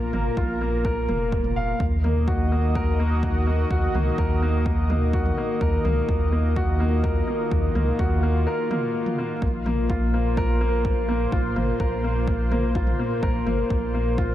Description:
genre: piano and strings electronica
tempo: 126 BPM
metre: 4/4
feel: straight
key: unclear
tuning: A4 = 440 Hz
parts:
  - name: lush unison pad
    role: sustained chords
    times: 0.0-14.3 s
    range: Bb2 to Eb5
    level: -29 LUFS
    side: equal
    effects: chorus, sidechain pumping
  - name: warm baby grand piano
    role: riff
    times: 0.0-14.3 s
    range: Bb3 to F5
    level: -26 LUFS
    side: left 1 dB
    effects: digital delay
  - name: warm sub bass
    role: bass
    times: 0.0-14.3 s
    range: F1 to Eb2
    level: -24 LUFS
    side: equal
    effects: sidechain pumping
  - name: electronic toms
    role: drums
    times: 0.1-13.6 s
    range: none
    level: -34 LUFS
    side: right 1 dB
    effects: overdrive
  - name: electronic kick drum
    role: drums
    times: 0.4-14.3 s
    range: none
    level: -27 LUFS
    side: equal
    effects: overdrive
room: little or no reverb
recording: none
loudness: -20 LUFS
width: side -13 dB against mid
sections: 0.0-14.3 A section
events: break 8.5-9.4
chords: 0.0 Bb5; 1.8 Ebm; 9.4 Bbsus2

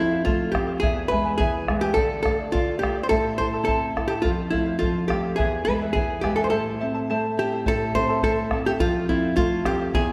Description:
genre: andean folk, Andean ensemble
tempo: 105 BPM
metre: 2/4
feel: straight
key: unclear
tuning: A4 = 441 Hz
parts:
  - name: archtop guitar, miked and amplified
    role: melody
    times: 0.0-10.1 s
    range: E4 to C5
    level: -26 LUFS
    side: equal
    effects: none
  - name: charango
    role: accompaniment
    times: 0.0-10.1 s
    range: E4 to A5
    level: -31 LUFS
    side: equal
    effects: none
  - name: nylon-string guitar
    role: accompaniment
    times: 0.0-10.1 s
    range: E2 to E4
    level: -30 LUFS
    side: equal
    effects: none
  - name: bombo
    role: percussion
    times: 0.3-10.1 s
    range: none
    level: -30 LUFS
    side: equal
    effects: none
room: wet scoring stage reverb, RT60 2.0 s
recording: heard from further back in the room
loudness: -23 LUFS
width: mono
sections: 0.0-7.7 A section; 7.7-10.1 A section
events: none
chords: 0.0 F; 0.8 E; 2.0 Dm; 3.1 Am; 4.2 F; 5.4 E; 6.5 Am; 8.8 F

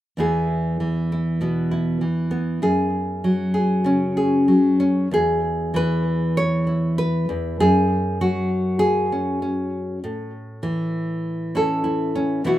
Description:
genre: folk, solo fingerstyle acoustic guitar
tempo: 98 BPM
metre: 4/4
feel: rubato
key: E major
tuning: A4 = 440 Hz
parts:
  - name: nylon-string guitar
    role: solo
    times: 0.2-12.6 s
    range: E2 to C#5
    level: -19 LUFS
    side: equal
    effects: slapback echo
room: little or no reverb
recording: recorded outdoors, with no room sound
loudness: -19 LUFS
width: side -13 dB against mid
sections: 0.2-5.1 A section; 5.1-12.6 B section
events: none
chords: 0.2 E; 2.6 F#sus2; 5.1 N.C.; 7.6 F#sus2; 10.0 A

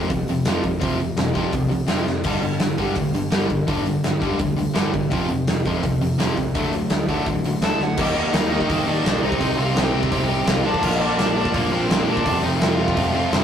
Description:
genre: punk rock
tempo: 168 BPM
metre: 4/4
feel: straight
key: unclear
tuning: A4 = 440 Hz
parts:
  - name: distorted electric guitar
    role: riff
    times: 0.0-13.4 s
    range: F2 to Eb4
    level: -24 LUFS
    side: left 5 dB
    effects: overdrive
  - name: overdriven electric guitar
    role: riff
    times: 0.0-13.4 s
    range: F2 to Eb4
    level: -25 LUFS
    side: right 4 dB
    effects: none
  - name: overdriven picked electric bass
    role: bass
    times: 0.0-13.4 s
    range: F1 to Bb2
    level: -28 LUFS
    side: equal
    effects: none
  - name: big rock drum kit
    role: drums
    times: 0.1-13.4 s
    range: crash cymbal, hi-hat, kick drum, snare drum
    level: -23 LUFS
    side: equal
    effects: none
  - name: nasal lead guitar with a parked wah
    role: melody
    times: 7.6-13.4 s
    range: Bb3 to C6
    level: -26 LUFS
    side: equal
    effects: overdrive
room: moderate studio reverb, RT60 0.6 s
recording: rough rehearsal-room recording, tube saturation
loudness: -18 LUFS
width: side -8 dB against mid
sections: 0.0-8.0 A section; 8.0-13.4 B section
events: drum fill 2.1, 7.8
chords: 0.0 F5; 2.2 G5; 5.1 F5; 6.5 D; 8.0 Eb; 9.2 Cm; 10.7 Bb; 12.3 F

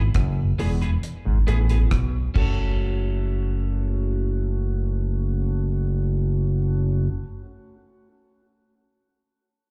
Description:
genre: roots reggae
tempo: 68 BPM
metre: 4/4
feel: straight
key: F# minor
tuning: A4 = 443 Hz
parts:
  - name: smooth gliding synth bass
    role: bass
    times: 0.0-7.1 s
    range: E1 to B1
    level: -24 LUFS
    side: equal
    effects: none
  - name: overdriven clav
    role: riff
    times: 0.1-2.2 s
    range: E2 to B2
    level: -34 LUFS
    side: equal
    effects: phaser, slapback echo
  - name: deep reggae drum kit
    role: drums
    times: 0.1-2.6 s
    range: crash cymbal, hi-hat, kick drum, rim click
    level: -28 LUFS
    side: equal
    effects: none
  - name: mellow tonewheel organ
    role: accompaniment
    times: 0.4-7.1 s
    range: E2 to F#4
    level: -36 LUFS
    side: equal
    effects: slow rotary speaker, tape echo, slapback echo
  - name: electric guitar at the edge of break-up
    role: accompaniment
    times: 0.6-7.3 s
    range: B3 to C#5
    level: -39 LUFS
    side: equal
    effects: tape echo, slapback echo
  - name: dark upright piano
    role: stabs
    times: 0.6-7.2 s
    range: B3 to A4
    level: -40 LUFS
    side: equal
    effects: slapback echo
room: studio reverb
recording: live gig heard through the venue's PA, club reverb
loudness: -23 LUFS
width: mono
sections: 0.0-2.8 A section; 2.8-6.3 B section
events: none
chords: 0.0 E; 2.4 F#m

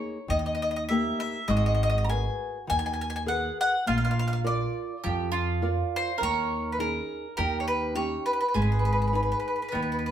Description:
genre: italian folk, Italian serenade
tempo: 102 BPM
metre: 4/4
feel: straight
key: G# minor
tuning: A4 = 440 Hz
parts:
  - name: bowl-back mandolin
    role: melody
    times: 0.0-10.1 s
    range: A#4 to A#5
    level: -29 LUFS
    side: left 1 dB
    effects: none
  - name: nylon-string guitar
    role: accompaniment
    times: 0.0-10.1 s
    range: D#3 to D5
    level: -32 LUFS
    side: left 1 dB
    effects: none
  - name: upright bass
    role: bass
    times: 0.3-10.1 s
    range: G#1 to E#2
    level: -28 LUFS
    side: right 1 dB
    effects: none
  - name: mandolin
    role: second line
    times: 1.5-10.1 s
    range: B3 to A#4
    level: -33 LUFS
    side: right 5 dB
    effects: none
room: wet studio reverb, RT60 0.8 s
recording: band playing live in one room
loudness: -25 LUFS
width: side -10 dB against mid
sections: 0.0-10.1 A section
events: none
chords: 0.3 D#; 1.5 G#madd9; 3.9 A#; 6.2 D#7sus4; 7.4 D#7; 8.6 G#m

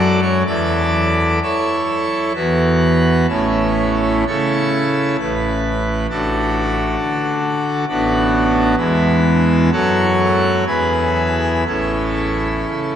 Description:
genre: classical, chorale-style piece for pipe organ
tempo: 59-68 BPM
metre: 3/4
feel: rubato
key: A major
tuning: A4 = 441 Hz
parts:
  - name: pipe organ, full organ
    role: solo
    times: 0.0-13.0 s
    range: A1 to D5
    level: -14 LUFS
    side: equal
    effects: none
room: wet cathedral reverb, RT60 5.2 s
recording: none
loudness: -14 LUFS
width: side -9 dB against mid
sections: 0.0-13.0 A section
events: none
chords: 0.5 A/E; 2.3 E5; 3.3 A; 5.2 N.C.; 6.1 D/A; 7.9 Bm7/A; 8.8 E; 9.7 F#m; 10.7 E; 11.7 A

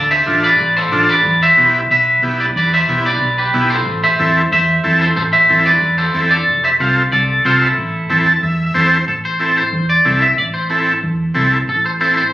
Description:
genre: latin, cumbia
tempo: 184 BPM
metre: 4/4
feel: straight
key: A minor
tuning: A4 = 440 Hz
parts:
  - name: twangy electric guitar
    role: melody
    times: 0.0-12.3 s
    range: E4 to F5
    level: -13 LUFS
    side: equal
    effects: spring reverb, slapback echo, plate reverb
  - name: hollow-body short-scale fingered electric bass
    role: bass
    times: 0.0-12.2 s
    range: F1 to E2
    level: -20 LUFS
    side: equal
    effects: none
  - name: overdriven combo organ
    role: accompaniment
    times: 0.3-12.2 s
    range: B3 to A5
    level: -15 LUFS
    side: equal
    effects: none
room: moderate large studio reverb, RT60 1.1 s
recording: recorded on a phone in the room, club reverb, compression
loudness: -11 LUFS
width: side -14 dB against mid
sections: 0.0-9.1 A section; 9.1-12.3 B section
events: transistor combo organ fill 8.1-9.1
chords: 0.0 Dm; 1.3 Em; 3.9 Am; 6.5 F; 7.8 Am

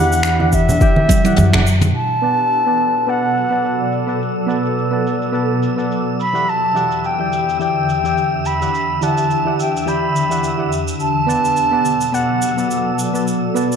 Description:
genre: sunset chillout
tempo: 106 BPM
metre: 4/4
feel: swing 55% on 16ths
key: E minor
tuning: A4 = 438 Hz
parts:
  - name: mellow wooden flute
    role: melody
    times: 0.0-13.0 s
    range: E5 to B5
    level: -19 LUFS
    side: equal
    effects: tape echo
  - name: soft electric-piano-like synth keys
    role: accompaniment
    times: 0.0-13.8 s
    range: E3 to A5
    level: -21 LUFS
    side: moving between left 3 dB and right 4 dB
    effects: chorus, auto-pan, low-pass filter, digital delay
  - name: shimmering ambient pad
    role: sustained chords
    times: 0.0-13.8 s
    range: E2 to E5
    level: -22 LUFS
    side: equal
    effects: chorus, built-in reverb, phaser, vintage 12-bit sampler grit
  - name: upright bass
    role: bass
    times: 0.0-1.9 s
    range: E2 to F#2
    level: -16 LUFS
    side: equal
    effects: none
  - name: jazz brush drum kit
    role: drums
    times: 0.1-13.8 s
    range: cabasa, finger snaps, toms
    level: -23 LUFS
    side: right 3 dB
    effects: low-pass filter on toms, low-pass filter on snare, low-pass filter on perc, low-pass filter on room
  - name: congas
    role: percussion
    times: 0.4-1.9 s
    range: none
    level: -21 LUFS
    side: right 1 dB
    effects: none
  - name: electronic kick drum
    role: drums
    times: 0.5-1.6 s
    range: none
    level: -16 LUFS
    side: equal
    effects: overdrive
  - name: wind-like tuned noise texture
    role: texture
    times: 2.5-13.8 s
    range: E6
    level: -30 LUFS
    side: right 4 dB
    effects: built-in reverb
room: moderate lush hall reverb, RT60 1.8 s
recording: dark, warm production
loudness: -14 LUFS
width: side -7 dB against mid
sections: 0.0-1.9 A section; 1.9-13.8 B section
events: drum fill 1.1-1.9; band accent 1.5; filter sweep on drum 1.9-13.8; filter sweep on synth keys 1.9-13.8; filter sweep on ambient pad 1.9-13.8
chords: 0.0 Em9; 1.9 Bm7; 6.2 Em9; 11.0 Bm7

